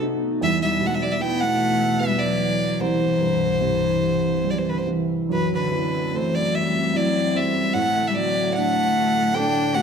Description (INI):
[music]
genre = celtic folk, Celtic slow air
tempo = 75 BPM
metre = 3/4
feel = rubato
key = unclear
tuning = A4 = 439 Hz
[part]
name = dark upright piano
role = accompaniment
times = 0.0-9.8 s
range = C2 to A4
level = -26 LUFS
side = right 5 dB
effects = none
[part]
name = glassy FM pad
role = sustained chords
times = 0.0-9.8 s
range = C2 to D#4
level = -28 LUFS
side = left 1 dB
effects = ensemble chorus, built-in reverb
[part]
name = clear fiddle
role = melody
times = 0.4-9.8 s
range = B4 to G5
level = -23 LUFS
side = right 1 dB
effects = none
[part]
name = warm cello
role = second line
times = 0.4-9.8 s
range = D3 to D4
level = -25 LUFS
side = left 6 dB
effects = none
[sound]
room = moderate scoring stage reverb, RT60 1.5 s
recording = none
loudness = -19 LUFS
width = side -6 dB against mid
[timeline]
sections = 0.0-9.8 A section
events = none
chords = 0.4 E5; 2.8 C; 5.3 F#m7b5; 7.8 D/A